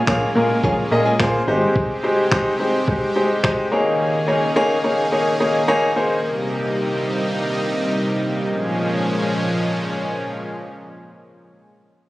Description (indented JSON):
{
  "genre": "dance-pop",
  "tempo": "107 BPM",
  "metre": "4/4",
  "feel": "straight",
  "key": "Bb dorian",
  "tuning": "A4 = 440 Hz",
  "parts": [
    { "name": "supersaw pad", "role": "sustained chords", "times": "0.0-11.5 s", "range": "Bb2 to Ab4", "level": "-22 LUFS", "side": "equal", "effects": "sidechain pumping" },
    { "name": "direct-recorded clean electric guitar", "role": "riff", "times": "0.0-1.7 s", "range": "Ab3 to Ab4", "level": "-26 LUFS", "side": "right 1 dB", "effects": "ensemble chorus" },
    { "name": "clear baby grand piano", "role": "accompaniment", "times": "0.1-6.2 s", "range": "Ab3 to Bb5", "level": "-18 LUFS", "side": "left 1 dB", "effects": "sidechain pumping" },
    { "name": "plucky analog bass", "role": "bass", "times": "0.1-1.7 s", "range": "Ab1 to Bb2", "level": "-22 LUFS", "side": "equal", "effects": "sidechain pumping" },
    { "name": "lo-fi sampler-style drum kit", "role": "drums", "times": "0.1-3.6 s", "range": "finger snaps, kick drum", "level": "-22 LUFS", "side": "equal", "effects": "none" }
  ],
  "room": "moderate lush hall reverb, RT60 2.6 s",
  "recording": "recorded on a phone in the room, studio reverb",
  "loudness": "-17 LUFS",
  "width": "side -18 dB against mid",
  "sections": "0.0-8.5 A section; 8.5-10.7 B section",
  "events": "grand piano fill 3.2-4.0",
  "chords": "0.0 Bbm7; 1.5 Abmaj7; 3.7 Eb7sus4; 6.2 Cm7; 8.5 Bbm7",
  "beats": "0.07 0.64 1.20 | 1.76 2.32 2.88 3.44 | 4.00 4.56 5.12 5.68 | 6.24 6.80 7.36 7.92 | 8.48 9.05 9.61 10.17"
}